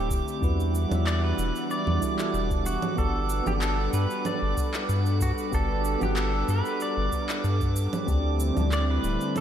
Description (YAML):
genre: sunset chillout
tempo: 94 BPM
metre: 4/4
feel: swing 53% on 16ths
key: G major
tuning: A4 = 439 Hz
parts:
  - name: pedal steel guitar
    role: melody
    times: 0.0-9.4 s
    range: F#4 to D5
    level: -32 LUFS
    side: right 1 dB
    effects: diffuse ambient delay
  - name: soft electric-piano-like synth keys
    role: accompaniment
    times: 0.0-9.4 s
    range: G3 to F#5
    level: -32 LUFS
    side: right 1 dB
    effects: chorus, auto-pan, diffuse ambient delay
  - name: airy breathy pad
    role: sustained chords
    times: 0.0-9.4 s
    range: D3 to F#5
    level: -32 LUFS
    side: equal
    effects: chorus
  - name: round analog bass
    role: bass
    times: 0.0-9.2 s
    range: D1 to G2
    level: -26 LUFS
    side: equal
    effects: none
  - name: drifting glass-harmonics texture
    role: texture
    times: 0.0-9.4 s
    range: D6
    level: -37 LUFS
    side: right 6 dB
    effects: chorus, built-in reverb
  - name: electronic cabasa, congas and handclaps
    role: drums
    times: 0.1-9.4 s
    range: none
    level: -34 LUFS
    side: right 3 dB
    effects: overdrive
  - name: electronic kick drum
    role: drums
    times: 0.1-8.2 s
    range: none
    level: -29 LUFS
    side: equal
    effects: none
room: moderate plate reverb, RT60 2.8 s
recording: dreamy mix soaked in reverb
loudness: -24 LUFS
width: side -10 dB against mid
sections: 0.0-9.4 A section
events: none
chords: 0.4 Em9; 3.0 Gmaj9; 8.1 D7sus4